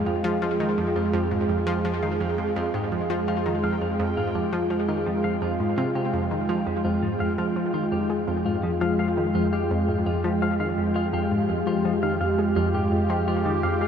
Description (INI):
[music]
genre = ambient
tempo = 84 BPM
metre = 4/4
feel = straight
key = F minor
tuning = A4 = 440 Hz
[part]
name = sweeping resonant pad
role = sustained chords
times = 0.0-13.9 s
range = Ab3 to G4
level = -25 LUFS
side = right 1 dB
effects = lush chorus, shimmer reverb
[part]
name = analog drone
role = bass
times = 0.0-13.9 s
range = F2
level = -33 LUFS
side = equal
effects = chorus
[part]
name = bubbling stepped-filter texture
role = texture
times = 0.0-13.9 s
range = G5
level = -41 LUFS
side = right 1 dB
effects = chorus, built-in reverb, shimmer reverb
[part]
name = clean electric guitar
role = arpeggios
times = 0.1-13.9 s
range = F3 to F5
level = -34 LUFS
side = left 3 dB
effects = auto-pan, tape echo, shimmer reverb
[part]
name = analog pluck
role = riff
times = 0.1-13.9 s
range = F2 to Ab3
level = -27 LUFS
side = equal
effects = chorus, tape echo, shimmer reverb
[sound]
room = wet huge ambient reverb, RT60 8.1 s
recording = dreamy mix soaked in reverb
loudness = -22 LUFS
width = side -8 dB against mid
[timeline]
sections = 0.0-13.9 A section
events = none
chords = 0.0 Fmadd9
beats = 0.42 | 1.14 1.85 2.56 3.28 | 3.99 4.71 5.42 6.14 | 6.85 7.57 8.28 8.99 | 9.71 10.42 11.14 11.85 | 12.56 13.28